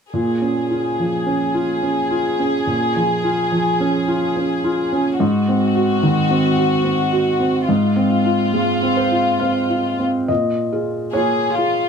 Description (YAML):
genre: neoclassical piano and strings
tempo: 71 BPM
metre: 3/4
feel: rubato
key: Bb minor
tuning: A4 = 440 Hz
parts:
  - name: warm chamber violin section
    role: melody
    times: 0.1-11.9 s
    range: F4 to Ab4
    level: -21 LUFS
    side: left 3 dB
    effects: none
  - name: felt-muted upright piano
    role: accompaniment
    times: 0.1-11.9 s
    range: Ab2 to F5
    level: -18 LUFS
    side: right 1 dB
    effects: none
room: light reverb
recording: none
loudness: -16 LUFS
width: side -6 dB against mid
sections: 0.1-10.3 A section; 10.3-11.9 B section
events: none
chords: 0.1 Bbm7; 5.2 Ab7; 7.7 Fm/Ab; 10.3 Bbm7